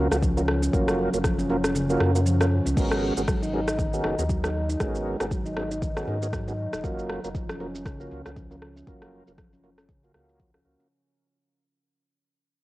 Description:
afro house; 118 BPM; 4/4; swing 57% on 16ths; A4 = 440 Hz
handpan; arpeggios; 0.0-10.9 s; C#3 to D#4; -29 LUFS; equal; sidechain pumping, tape echo
mellow tonewheel organ; stabs; 0.0-10.9 s; A#3 to A#4; -30 LUFS; right 2 dB; overdrive, chorus vibrato, slow rotary speaker, sidechain pumping, low-pass filter, tape echo
round analog bass; bass; 0.0-10.8 s; D#1 to G#2; -29 LUFS; equal; tube saturation, sidechain pumping
deep house drum kit; drums; 0.1-10.9 s; crash cymbal, rim click, shaker; -31 LUFS; equal; overdrive, low-pass filter on perc, cassette tape, low-pass filter on snare, low-pass filter on cymbals, low-pass filter on room
electronic kick drum; drums; 0.2-10.5 s; -28 LUFS; equal; overdrive, cassette tape
light reverb; home recording on cassette; -23 LUFS; side -17 dB against mid
0.0-2.8 A section; 2.8-10.9 B section
kick drops out 1.8-2.8; fade-out 2.8-10.9; filter sweep on drum 2.8-10.9
0.0 F#maj7; 2.8 G#m11; 6.8 F#maj7

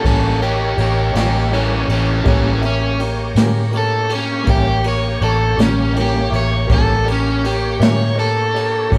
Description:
slow blues; 54 BPM (dotted quarters); 12/8; straight; A4 = 440 Hz
crunchy overdriven guitar; melody; 0.0-8.9 s; E3 to C#5; -22 LUFS; equal
clear grand piano; accompaniment; 0.0-9.0 s; G4 to E5; -29 LUFS; equal
electric guitar through a small old amp; accompaniment; 0.0-9.0 s; A2 to C#4; -27 LUFS; equal; tremolo
tonewheel organ; sustained chords; 0.0-9.0 s; Bb3 to C#5; -28 LUFS; equal; slow rotary speaker, overdrive, chorus vibrato
vintage muted fingered electric bass; bass; 0.0-9.0 s; A1 to A2; -21 LUFS; equal
jazz brush drum kit; drums; 0.0-9.0 s; kick drum, ride cymbal, snare drum; -24 LUFS; equal
light reverb; band playing live in one room; -17 LUFS; mono
0.0-9.0 A section
overdriven electric guitar solo 0.0-9.0
0.0 A7b9

